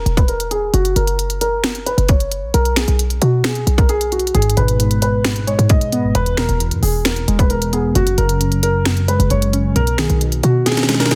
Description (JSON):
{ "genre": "hip hop, trap", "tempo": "133 BPM", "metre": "4/4", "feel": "half-time", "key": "G# minor", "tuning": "A4 = 441 Hz", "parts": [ { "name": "dark baby grand piano", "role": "melody", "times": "0.0-11.2 s", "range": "F#4 to D#5", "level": "-23 LUFS", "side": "equal", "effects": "low-pass filter" }, { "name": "short 808-style bass", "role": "bass", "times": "0.0-11.2 s", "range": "E1 to B2", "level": "-21 LUFS", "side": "equal", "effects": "none" }, { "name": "trap drum kit", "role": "drums", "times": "0.1-11.2 s", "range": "finger snaps, hi-hat, kick drum, snare drum", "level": "-20 LUFS", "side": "equal", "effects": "none" }, { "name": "warbly lo-fi synth keys", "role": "accompaniment", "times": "4.3-11.2 s", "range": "E2 to C#4", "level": "-20 LUFS", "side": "equal", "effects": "chorus, low-pass filter" } ], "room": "little or no reverb", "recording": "dense, heavily limited modern master", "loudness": "-16 LUFS", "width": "mono", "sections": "0.0-11.2 A section", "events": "filter sweep 0.0-4.3; drum fill 10.7-11.2", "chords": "0.0 E; 0.7 F#5; 2.5 G#m7/B; 4.3 G#m; 6.2 E; 8.0 F#sus2; 9.8 B6" }